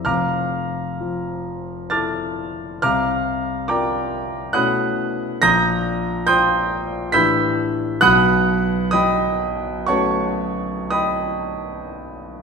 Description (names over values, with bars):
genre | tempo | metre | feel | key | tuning
classical, impressionist solo piano | 56-70 BPM | 3/4 | rubato | unclear | A4 = 441 Hz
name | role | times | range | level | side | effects
warm concert grand piano | solo | 0.0-12.4 s | F1 to B6 | -18 LUFS | equal | none
room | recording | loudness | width
wet scoring stage reverb, RT60 1.9 s | minimal, uncompressed stereo recording | -17 LUFS | side -5 dB against mid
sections
0.0-12.4 A section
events
none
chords
0.1 Dmadd9/F; 2.8 C11; 4.6 B11; 5.4 Bbsus24; 7.2 A11; 8.0 B9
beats
| 0.08 1.00 1.92 | 2.83 3.70 4.57 | 5.44 6.30 7.17 | 8.04 8.93 9.89 | 10.93 12.00